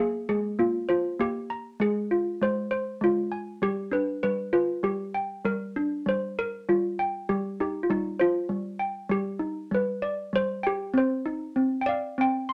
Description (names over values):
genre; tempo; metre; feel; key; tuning
children's music, lullaby; 98 BPM; 3/4; straight; C minor; A4 = 440 Hz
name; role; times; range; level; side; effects
malleted handbells; solo; 0.0-12.5 s; G3 to C6; -28 LUFS; equal; none
room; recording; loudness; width
moderate studio reverb, RT60 0.5 s; none; -28 LUFS; mono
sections
0.0-12.5 A section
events
none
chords
0.0 Abadd9; 1.8 Fm; 3.6 G; 5.5 Bb6; 7.3 Cm; 9.1 Eb/G; 9.7 G; 10.9 Cmadd9